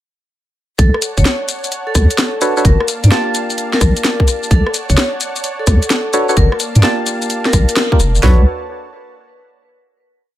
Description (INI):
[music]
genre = UK garage, two-step garage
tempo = 129 BPM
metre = 4/4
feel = swing 67% on 16ths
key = unclear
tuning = A4 = 440 Hz
[part]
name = vibraphone with medium hard mallets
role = melody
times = 0.8-8.4 s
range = A4 to D5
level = -22 LUFS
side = left 2 dB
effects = tape echo
[part]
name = warm analog pad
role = sustained chords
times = 0.8-8.4 s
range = Bb3 to A5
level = -27 LUFS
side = right 1 dB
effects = chorus, sidechain pumping
[part]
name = deep soft wobble bass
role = bass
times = 0.8-8.4 s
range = F1 to G2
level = -11 LUFS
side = equal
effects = chorus
[part]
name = garage drum kit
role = drums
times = 0.8-8.4 s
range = kick drum, snare drum, toms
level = -14 LUFS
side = equal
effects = overdrive
[part]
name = garage drum kit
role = drums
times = 0.8-8.2 s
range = hi-hat, rim click, shaker, snare drum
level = -18 LUFS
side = left 1 dB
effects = overdrive
[part]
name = percussive organ stab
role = stabs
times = 2.4-8.4 s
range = Bb3 to A5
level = -19 LUFS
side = right 1 dB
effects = chorus, digital delay
[sound]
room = digital ambience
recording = none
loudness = -12 LUFS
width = side -13 dB against mid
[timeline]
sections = 0.8-8.2 drop; 8.2-10.1 final chord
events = drop 0.8-8.2; band accent 7.8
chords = 0.8 Bm9; 2.6 Gm9; 4.5 Bm9; 6.4 Gm9; 8.2 Bm9